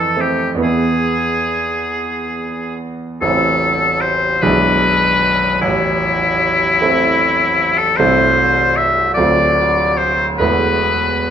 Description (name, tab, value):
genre	classical, romantic duo for oboe and grand piano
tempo	46-52 BPM (dotted quarters)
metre	6/8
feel	rubato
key	A minor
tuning	A4 = 440 Hz
part	clear oboe	melody	0.0-11.3 s	E4 to E5	-15 LUFS	left 2 dB	none
part	bright concert grand piano	accompaniment	0.0-11.3 s	A0 to F4	-17 LUFS	right 2 dB	none
room	moderate recital hall reverb, RT60 1.4 s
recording	none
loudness	-13 LUFS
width	side -8 dB against mid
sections	0.0-3.2 A section; 3.2-11.3 B section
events	none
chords	0.0 Fmaj7; 0.6 E; 3.2 Am; 4.4 E7/B; 5.6 Am; 8.0 Am/C; 9.2 Dm7; 10.4 Esus4